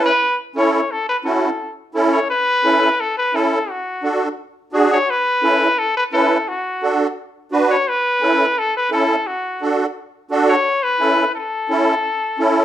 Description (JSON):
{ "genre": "latin", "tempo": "172 BPM", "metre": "4/4", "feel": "straight", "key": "A major", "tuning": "A4 = 440 Hz", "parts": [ { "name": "clear trumpet", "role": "melody", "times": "0.0-12.6 s", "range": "F#4 to C#5", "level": "-18 LUFS", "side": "left 2 dB", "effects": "none" }, { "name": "musette accordion", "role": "accompaniment", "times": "0.0-12.6 s", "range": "C#4 to B4", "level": "-17 LUFS", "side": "right 2 dB", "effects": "none" } ], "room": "wet studio reverb, RT60 0.7 s", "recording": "rough home demo mix", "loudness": "-15 LUFS", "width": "side -11 dB against mid", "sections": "0.0-2.3 A section; 2.3-12.6 B section", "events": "none", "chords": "0.0 A; 3.7 D; 5.1 A; 6.5 D; 7.9 A; 9.3 D; 10.7 A", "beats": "0.21 0.56 | 0.91 1.26 1.61 1.96 | 2.31 2.65 3.00 3.35 | 3.70 4.04 4.39 4.74 | 5.09 5.44 5.79 6.13 | 6.48 6.83 7.18 7.53 | 7.87 8.22 8.57 8.92 | 9.27 9.62 9.96 10.31 | 10.66 11.01 11.36 11.71 | 12.05 12.40" }